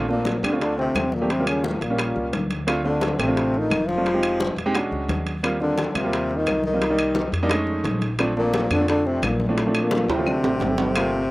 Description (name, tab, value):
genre	Afro-Cuban jazz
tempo	174 BPM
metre	4/4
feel	straight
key	Bb major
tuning	A4 = 441 Hz
part	warm baby grand piano	accompaniment	0.0-11.2 s	F3 to D5	-25 LUFS	right 1 dB	none
part	upright bass	bass	0.0-11.3 s	E1 to F2	-29 LUFS	equal	none
part	mellow trombone	melody	0.1-11.3 s	A3 to F4	-25 LUFS	equal	none
part	breathy tenor saxophone	second line	0.1-11.3 s	A2 to F3	-27 LUFS	left 2 dB	none
part	bongos	percussion	0.1-11.1 s	none	-32 LUFS	left 3 dB	none
part	congas	percussion	0.1-11.3 s	none	-30 LUFS	left 1 dB	none
part	timbales	percussion	0.3-11.1 s	none	-30 LUFS	right 4 dB	none
part	claves	percussion	0.4-11.1 s	none	-31 LUFS	left 3 dB	none
room	little or no reverb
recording	recorded outdoors, with no room sound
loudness	-20 LUFS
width	side -19 dB against mid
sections	0.0-11.0 A section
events	drum fill 10.1-11.0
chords	0.0 Bbmaj9; 1.3 Eb9; 2.7 Dm7; 4.1 Fm7; 4.7 E13; 5.4 Eb69; 6.8 Cm7; 7.5 F7alt; 8.2 Bbmaj9; 10.3 D7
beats	0.26 0.61 0.95 | 1.30 1.64 1.99 2.33 | 2.68 3.02 3.37 3.71 | 4.06 4.40 4.75 5.09 | 5.44 5.78 6.13 6.47 | 6.82 7.16 7.51 7.85 | 8.20 8.54 8.89 9.23 | 9.58 9.92 10.27 10.61 | 10.96 11.30